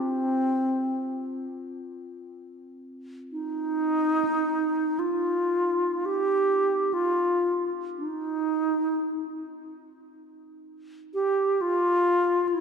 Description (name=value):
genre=world meditative, free-time meditation music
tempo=free time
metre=none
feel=none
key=unclear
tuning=A4 = 441 Hz
part: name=bright bass flute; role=melody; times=0.0-12.6 s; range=C4 to G4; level=-24 LUFS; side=equal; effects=diffuse ambient delay
part: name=bronze singing bowl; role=texture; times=0.0-12.2 s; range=C4 to F4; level=-37 LUFS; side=right 1 dB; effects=stereo widening
room=wet concert hall reverb, RT60 2.0 s, studio reverb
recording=dark, warm production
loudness=-23 LUFS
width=side -6 dB against mid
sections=0.0-12.6 A section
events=none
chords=none